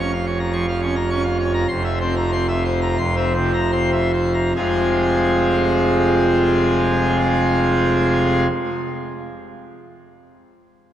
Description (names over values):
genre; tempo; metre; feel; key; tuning
classical, organ toccata; 69-112 BPM; 4/4; straight; F minor; A4 = 442 Hz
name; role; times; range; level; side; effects
pipe organ, full organ; solo; 0.0-8.5 s; F1 to Db6; -17 LUFS; equal; none
room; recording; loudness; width
wet church reverb, RT60 3.6 s; worn, warbling old tape, cassette tape, warbly pitch drift; -16 LUFS; side -11 dB against mid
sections
0.0-4.6 A section; 4.6-10.9 B section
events
slowing down 0.0-4.6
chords
0.0 Bbm/F; 1.7 C7/F; 4.6 Fm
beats
0.00 0.54 1.10 | 1.69 2.32 2.99 3.74 | 4.57 5.42 6.29 7.16 | 8.03